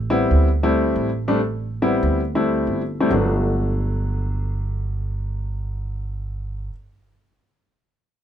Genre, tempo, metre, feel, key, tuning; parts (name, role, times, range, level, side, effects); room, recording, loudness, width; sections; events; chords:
Afro-Cuban jazz; 139 BPM; 4/4; straight; G major; A4 = 440 Hz
upright bass; bass; 0.0-6.7 s; G1 to D2; -22 LUFS; right 1 dB
warm baby grand piano; accompaniment; 0.1-6.7 s; F#3 to E4; -20 LUFS; left 2 dB
light reverb; minimal, uncompressed stereo recording; -19 LUFS; side -10 dB against mid
0.0-3.1 A section; 3.1-6.6 B section
0.0 Am9; 0.5 D7sus4; 1.4 Am9; 2.3 D7sus4; 3.1 Gmaj9